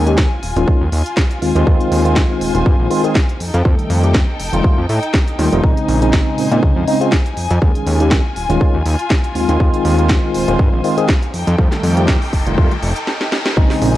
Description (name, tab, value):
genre	filtered disco house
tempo	121 BPM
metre	4/4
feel	swing 55% on 16ths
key	unclear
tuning	A4 = 442 Hz
part	tine electric piano	accompaniment	0.0-14.0 s	Db3 to A4	-17 LUFS	equal	fast stereo tremolo, phaser, sidechain pumping, low-pass filter
part	clear symphonic string section	sustained chords	0.0-14.0 s	Eb4 to Ab5	-25 LUFS	left 2 dB	sidechain pumping, low-pass filter
part	fat analog bass	bass	0.0-14.0 s	Eb1 to Bb2	-17 LUFS	equal	sidechain pumping, low-pass filter
part	house drum kit	drums	0.1-13.9 s	hi-hat, snare drum	-22 LUFS	equal	sidechain pumping on hats, studio reverb
part	electronic kick drum	drums	0.2-13.7 s	none	-14 LUFS	equal	studio reverb
part	riser	sound effects	11.2-13.6 s	none	-29 LUFS	equal	none
room	little or no reverb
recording	dry, gritty hardware recording, cassette tape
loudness	-13 LUFS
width	side -14 dB against mid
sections	0.0-13.6 A section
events	filter sweep 0.0-13.6; riser 11.2-13.6; break 13.1-13.6; drum fill 13.1-13.6; band accent 13.4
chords	0.0 Eb9sus4; 1.4 Ab6/Eb; 3.4 F9; 5.6 Bbm11; 7.6 Eb9sus4; 9.4 Ab6/Eb; 11.3 F9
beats	0.18 0.68 1.17 | 1.67 2.16 2.66 3.16 | 3.65 4.15 4.64 5.14 | 5.63 6.13 6.63 7.12 | 7.62 8.12 8.61 9.11 | 9.60 10.10 10.59 11.09 | 11.59 12.08 12.58 13.07 | 13.57